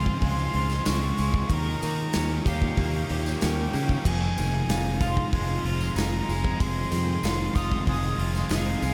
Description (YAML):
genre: rock, shoegaze and dream pop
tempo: 94 BPM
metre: 4/4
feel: straight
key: F minor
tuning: A4 = 440 Hz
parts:
  - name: breathy silver concert flute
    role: melody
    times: 0.0-8.9 s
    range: F5 to Eb6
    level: -36 LUFS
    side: equal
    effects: delay
  - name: string machine, violins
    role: sustained chords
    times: 0.0-8.9 s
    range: Db3 to Bb5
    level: -39 LUFS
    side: equal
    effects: none
  - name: picked twelve-string acoustic guitar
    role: arpeggios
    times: 0.0-8.9 s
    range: F4 to G5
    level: -41 LUFS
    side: equal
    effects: subtle chorus, delay
  - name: electric guitar at the edge of break-up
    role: riff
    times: 0.0-8.9 s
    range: F2 to G4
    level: -36 LUFS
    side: equal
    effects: reverse reverb
  - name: thick fuzz guitar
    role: riff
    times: 0.0-8.9 s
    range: F2 to Ab4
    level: -35 LUFS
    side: equal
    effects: distortion, ensemble chorus
  - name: modern bright fingered electric bass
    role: bass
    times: 0.0-8.9 s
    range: F1 to Eb3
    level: -30 LUFS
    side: equal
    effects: none
  - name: huge arena drum kit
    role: drums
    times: 0.1-8.9 s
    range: crash cymbal, hi-hat, kick drum, snare drum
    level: -31 LUFS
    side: equal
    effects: none
  - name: tambourine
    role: percussion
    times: 0.7-8.9 s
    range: none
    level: -46 LUFS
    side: equal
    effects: none
room: moderate huge ambient reverb, RT60 4.2 s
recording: dreamy mix soaked in reverb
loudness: -26 LUFS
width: mono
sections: 0.0-8.9 A section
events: none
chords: 0.0 Dbmaj7; 1.5 Eb7; 4.0 Fm7